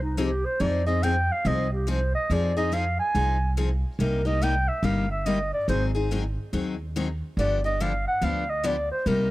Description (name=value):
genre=acoustic string swing (jazz manouche)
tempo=142 BPM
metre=4/4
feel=swing 62% on 8ths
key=unclear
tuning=A4 = 440 Hz
part: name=breathy clarinet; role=melody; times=0.0-9.3 s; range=Eb4 to Ab5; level=-26 LUFS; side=right 1 dB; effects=none
part: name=upright bass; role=bass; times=0.0-9.3 s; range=G1 to F2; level=-26 LUFS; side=right 1 dB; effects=none
part: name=picked steel-string acoustic guitar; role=accompaniment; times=0.2-9.3 s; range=C3 to Ab4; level=-28 LUFS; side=left 4 dB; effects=none
room=little or no reverb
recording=dry, close 1970s-style studio recording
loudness=-23 LUFS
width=side -17 dB against mid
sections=0.0-9.3 A section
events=clarinet solo 0.0-9.3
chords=0.0 Fm7; 4.0 Cm7; 5.7 Ab7; 7.4 G7